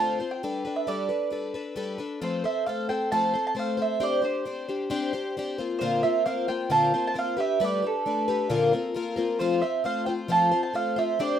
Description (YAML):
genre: rock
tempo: 134 BPM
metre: 4/4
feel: straight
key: unclear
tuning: A4 = 438 Hz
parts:
  - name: mandolin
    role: melody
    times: 0.0-11.4 s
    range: A4 to A5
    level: -26 LUFS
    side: right 4 dB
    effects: none
  - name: picked plugged-in twelve-string acoustic guitar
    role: accompaniment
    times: 0.0-11.4 s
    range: Bb2 to C5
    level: -27 LUFS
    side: left 4 dB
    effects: none
room: light reverb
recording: rough home demo mix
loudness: -24 LUFS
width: side -9 dB against mid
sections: 0.0-2.2 A section; 2.2-11.4 B section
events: none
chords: 0.4 Gadd9; 2.2 F; 4.0 Csus2; 5.6 Bbadd9; 7.4 Gadd9; 8.5 Bbadd9; 9.4 F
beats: | 0.42 0.87 1.32 1.76 | 2.21 2.66 3.10 3.55 | 4.00 4.45 4.90 5.34 | 5.79 6.24 6.69 7.14 | 7.59 8.04 8.49 8.95 | 9.39 9.85 10.29 10.74 | 11.19